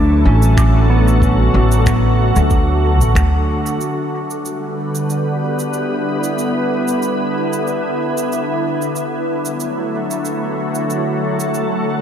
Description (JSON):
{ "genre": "ambient dub", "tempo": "93 BPM", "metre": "4/4", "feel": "swing 54% on 16ths", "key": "E minor", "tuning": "A4 = 442 Hz", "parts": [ { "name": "soft additive organ-like pad", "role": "sustained chords", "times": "0.0-12.0 s", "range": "D3 to B4", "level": "-18 LUFS", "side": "equal", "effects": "ensemble chorus, built-in reverb" }, { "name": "pedal steel guitar", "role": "arpeggios", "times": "0.0-3.3 s", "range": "B3 to D6", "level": "-22 LUFS", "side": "right 1 dB", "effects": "dub echo" }, { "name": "upright bass", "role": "bass", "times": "0.0-3.8 s", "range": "A1 to D2", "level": "-13 LUFS", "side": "equal", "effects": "tube saturation" }, { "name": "cabasa and finger snaps", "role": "drums", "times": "0.4-11.7 s", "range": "none", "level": "-27 LUFS", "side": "right 3 dB", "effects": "dub echo" }, { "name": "electronic kick drum", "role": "drums", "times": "0.6-3.3 s", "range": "none", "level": "-18 LUFS", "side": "equal", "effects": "none" } ], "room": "moderate echo chamber reverb, RT60 2.8 s", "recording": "none", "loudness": "-14 LUFS", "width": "side -9 dB against mid", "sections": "0.0-3.8 A section; 3.8-12.0 B section", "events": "none", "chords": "0.0 D; 3.8 Em7; 9.0 D", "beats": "0.58 | 1.22 1.87 2.51 3.16 | 3.80 4.45 5.09 5.74 | 6.38 7.03 7.67 8.32 | 8.96 9.61 10.25 10.90 | 11.54" }